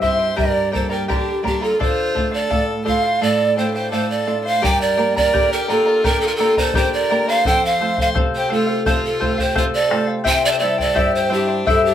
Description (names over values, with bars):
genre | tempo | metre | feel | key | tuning
andean folk, Andean ensemble | 85 BPM | 2/4 | straight | unclear | A4 = 438 Hz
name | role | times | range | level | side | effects
breathy polished pan flute | melody | 0.0-11.9 s | G4 to G5 | -19 LUFS | right 2 dB | none
bright violin | second line | 0.0-11.9 s | D4 to D5 | -26 LUFS | left 3 dB | none
charango | accompaniment | 0.0-11.9 s | E4 to Bb5 | -22 LUFS | left 3 dB | none
flamenco guitar | accompaniment | 0.0-11.9 s | F2 to G4 | -25 LUFS | right 3 dB | none
bombo | percussion | 0.0-11.8 s | none | -23 LUFS | left 1 dB | none
room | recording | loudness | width
wet small room reverb, RT60 0.5 s | band playing live in one room | -16 LUFS | side -10 dB against mid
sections
0.0-4.6 A section; 4.6-11.9 B section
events
none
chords
0.4 Gm; 1.8 Dm; 4.6 Gm; 7.5 F; 10.3 C